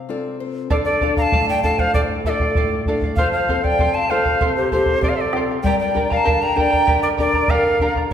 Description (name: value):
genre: andean folk, Andean ensemble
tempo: 97 BPM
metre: 2/4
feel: straight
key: D minor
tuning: A4 = 440 Hz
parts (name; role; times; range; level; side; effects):
- nylon-string guitar; accompaniment; 0.0-8.1 s; A2 to D5; -25 LUFS; left 4 dB; none
- bright quena; melody; 0.7-8.0 s; C5 to Bb5; -20 LUFS; right 1 dB; none
- bright reedy polished pan flute; second line; 0.7-7.9 s; G4 to G5; -23 LUFS; left 3 dB; none
- charango; accompaniment; 0.7-8.1 s; G4 to Bb5; -24 LUFS; right 4 dB; none
- bombo; percussion; 0.7-8.1 s; none; -23 LUFS; right 1 dB; none
room: wet recital hall reverb, RT60 1.8 s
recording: recorded in a church or concert hall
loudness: -16 LUFS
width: side -9 dB against mid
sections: 0.7-8.1 A section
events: nylon-string guitar fill 0.0-0.7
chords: 0.0 F; 0.7 Dm; 3.2 F; 5.6 Gm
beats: 0.09 | 0.71 1.32 | 1.94 2.56 | 3.18 3.79 | 4.41 5.03 | 5.65 6.26 | 6.88 7.50 | 8.12